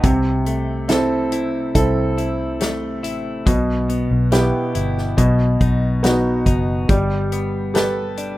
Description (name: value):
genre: pop ballad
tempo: 70 BPM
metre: 4/4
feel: straight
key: unclear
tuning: A4 = 440 Hz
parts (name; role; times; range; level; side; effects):
- clear grand piano; accompaniment; 0.0-8.4 s; B2 to B4; -20 LUFS; right 1 dB; none
- direct-recorded clean electric guitar; arpeggios; 0.0-8.4 s; B2 to A4; -25 LUFS; left 4 dB; wide subtle chorus
- vintage muted fingered electric bass; bass; 0.0-8.4 s; F#1 to C2; -22 LUFS; equal; none
- natural country drum kit; drums; 0.0-8.4 s; hi-hat, kick drum, snare drum; -20 LUFS; equal; none
room: small room ambience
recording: rough home demo mix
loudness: -16 LUFS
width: side -16 dB against mid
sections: 0.0-8.4 A section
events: none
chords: 0.0 Am/C; 3.5 Em/B; 5.2 B; 6.9 Gadd9